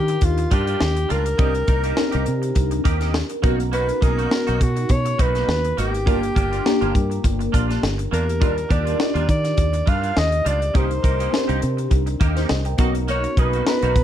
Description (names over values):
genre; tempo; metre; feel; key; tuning
polished 1980s jazz-funk pop; 103 BPM; 4/4; swing 54% on 16ths; Eb major; A4 = 440 Hz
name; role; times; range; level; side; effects
breathy alto saxophone; melody; 0.0-14.0 s; F4 to F5; -24 LUFS; equal; none
bell-like FM electric piano; accompaniment; 0.0-14.0 s; Bb3 to A#5; -26 LUFS; left 1 dB; phaser, wide subtle chorus
fingered electric bass; bass; 0.0-14.0 s; G1 to Eb3; -23 LUFS; equal; none
clean electric guitar; riff; 0.1-14.0 s; G3 to Bb4; -29 LUFS; right 4 dB; ensemble chorus
tight funk drum kit; drums; 0.1-14.0 s; hi-hat, kick drum, snare drum; -21 LUFS; equal; none
room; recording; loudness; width
light reverb; dark, warm production; -18 LUFS; side -10 dB against mid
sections
0.0-14.0 A section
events
none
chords
0.0 Ebmaj9; 1.4 Cm7; 3.4 Bmaj7; 6.1 Gm7; 8.4 Ebmaj9; 10.7 Cm7; 12.8 Bmaj7